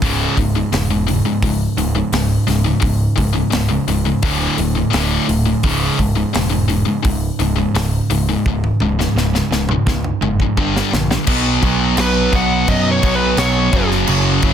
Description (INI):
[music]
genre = heavy metal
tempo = 85 BPM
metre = 4/4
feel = straight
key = unclear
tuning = A4 = 440 Hz
[part]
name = sludgy distorted guitar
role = riff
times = 0.0-14.5 s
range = C#2 to B3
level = -19 LUFS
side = right 7 dB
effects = overdrive
[part]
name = tight distorted guitar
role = riff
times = 0.0-14.5 s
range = C#2 to B3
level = -19 LUFS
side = left 10 dB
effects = distortion
[part]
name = growling picked electric bass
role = bass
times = 0.0-14.5 s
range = C#1 to F#2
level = -20 LUFS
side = equal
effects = overdrive
[part]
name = modern studio drum kit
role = drums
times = 0.0-14.5 s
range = crash cymbal, hi-hat, kick drum, snare drum, toms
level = -21 LUFS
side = equal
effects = none
[part]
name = high-gain lead guitar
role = melody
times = 12.0-13.9 s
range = B4 to F#5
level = -19 LUFS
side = left 1 dB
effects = distortion
[sound]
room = light reverb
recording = dense, heavily limited modern master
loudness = -14 LUFS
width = side -9 dB against mid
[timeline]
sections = 0.0-11.3 A section; 11.3-14.5 B section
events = drum fill 8.5-11.3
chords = 0.0 C#5; 4.2 D5; 5.6 C#5; 10.6 G5; 11.3 B5; 13.7 F#5